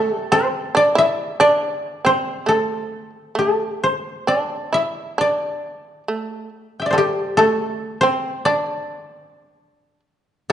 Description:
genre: japanese traditional, Japanese chamber music.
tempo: 64-71 BPM.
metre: 2/4.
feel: rubato.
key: D suspended pentatonic.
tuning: A4 = 442 Hz.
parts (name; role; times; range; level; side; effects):
koto; melody; 0.0-10.5 s; G4 to G5; -18 LUFS; left 1 dB; none.
shamisen; second line; 0.0-10.0 s; G3 to E4; -23 LUFS; right 3 dB; none.
room: moderate recital hall reverb, RT60 1.7 s.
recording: nothing above 11.0 kHz.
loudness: -17 LUFS.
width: side -10 dB against mid.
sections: 0.0-10.5 A section.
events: none.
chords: none.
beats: 0.74 | 1.59 2.47 | 3.37 4.28 | 5.18 6.07 | 6.94 7.79 | 8.65 9.56 | 10.49.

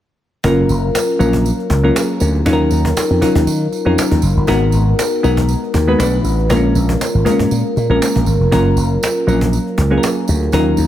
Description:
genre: polished 1980s jazz-funk pop.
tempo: 119 BPM.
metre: 4/4.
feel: swing 54% on 16ths.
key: unclear.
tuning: A4 = 440 Hz.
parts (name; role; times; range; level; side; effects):
bell-like FM electric piano; accompaniment; 0.4-10.9 s; Gb3 to Cb5; -15 LUFS; left 1 dB; lush chorus.
slap bass with an envelope filter; bass; 0.4-10.9 s; F1 to Eb3; -15 LUFS; equal; none.
cajon; drums; 0.4-10.8 s; none; -23 LUFS; equal; none.
tambourine; percussion; 0.7-10.9 s; none; -30 LUFS; right 8 dB; none.
room: light reverb, small room ambience.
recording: none.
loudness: -12 LUFS.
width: side -12 dB against mid.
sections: 0.4-10.9 A section.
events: none.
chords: 0.4 Gbmaj7; 2.5 Ebm9; 4.5 Abm9; 6.0 Bm7; 6.5 Bbm7; 8.5 Gbmaj7.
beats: | 0.44 0.95 1.45 1.96 | 2.46 2.97 3.47 3.98 | 4.48 4.99 5.49 5.99 | 6.50 7.00 7.51 8.01 | 8.52 9.02 9.52 10.03 | 10.53.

